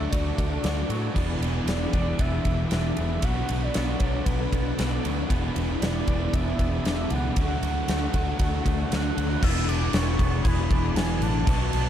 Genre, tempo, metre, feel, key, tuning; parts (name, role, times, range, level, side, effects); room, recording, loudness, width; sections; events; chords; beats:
rock, shoegaze and dream pop; 116 BPM; 4/4; straight; E mixolydian; A4 = 440 Hz
reedy FM lead; melody; 0.0-11.9 s; B4 to F#6; -34 LUFS; right 1 dB; chorus, tremolo, digital delay
string machine, full ensemble; sustained chords; 0.0-9.4 s; G#4 to D6; -42 LUFS; equal
twangy electric guitar; arpeggios; 0.0-11.9 s; F#3 to G#4; -38 LUFS; right 3 dB; ensemble chorus, digital delay
biting overdriven guitar; riff; 0.0-9.4 s; B2 to G#4; -34 LUFS; right 10 dB; reverse reverb
raw garage guitar; riff; 0.0-11.9 s; B2 to G#4; -34 LUFS; left 11 dB; overdrive, ensemble chorus
fingered electric bass; bass; 0.0-11.9 s; E1 to A2; -28 LUFS; equal
huge arena drum kit; drums; 0.1-11.9 s; crash cymbal, kick drum, ride cymbal, snare drum; -27 LUFS; equal
overdriven electric guitar; riff; 1.1-11.9 s; E2 to D4; -32 LUFS; equal
studio ambience; dark, warm production; -22 LUFS; side -10 dB against mid
0.0-9.4 A section; 9.4-11.9 B section
0.0 Dmaj7; 1.2 E7; 3.2 Bm7; 5.3 E7; 7.4 Dmaj7; 9.4 E7
0.13 0.65 | 1.17 1.68 2.20 2.72 | 3.23 3.75 4.27 4.79 | 5.30 5.82 6.33 6.85 | 7.37 7.88 8.40 8.91 | 9.43 9.94 10.46 10.97 | 11.48